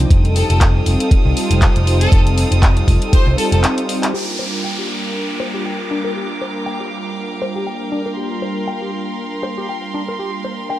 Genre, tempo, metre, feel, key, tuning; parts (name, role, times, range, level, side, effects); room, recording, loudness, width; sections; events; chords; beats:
nu-disco, nu disco; 119 BPM; 4/4; swing 56% on 16ths; G minor; A4 = 441 Hz
warm analog pad; accompaniment; 0.0-10.8 s; G3 to C5; -22 LUFS; equal; chorus, sidechain pumping, digital delay
rich studio violin section; sustained chords; 0.0-10.8 s; A4 to Eb6; -28 LUFS; right 2 dB; sidechain pumping, low-pass filter
picked electric bass; bass; 0.0-3.6 s; F1 to C2; -15 LUFS; equal
electronic kick drum; drums; 0.1-3.2 s; -13 LUFS; equal; overdrive, small room ambience
house drum kit; drums; 0.1-4.1 s; handclaps, hi-hat; -22 LUFS; left 1 dB; small room ambience
clear studio violin section; melody; 0.4-3.6 s; A4 to C5; -23 LUFS; left 1 dB; digital delay
direct-recorded clean electric guitar; riff; 4.1-10.8 s; D4 to G5; -26 LUFS; left 3 dB; lush chorus, low-pass filter
downlifter; sound effects; 4.1-8.2 s; -27 LUFS; equal
light reverb; -15 LUFS; side -14 dB against mid
0.0-4.1 A section; 4.1-10.8 B section
break 3.6-4.1; drum fill 3.6-4.1; filter sweep on analog synth pad 4.1-10.8
0.1 F9; 4.1 Gm7
| 0.11 0.61 1.12 1.62 | 2.13 2.63 3.13 3.64 | 4.14 4.65 5.15 5.66 | 6.16 6.66 7.17 7.67 | 8.18 8.68 9.18 9.69 | 10.19 10.70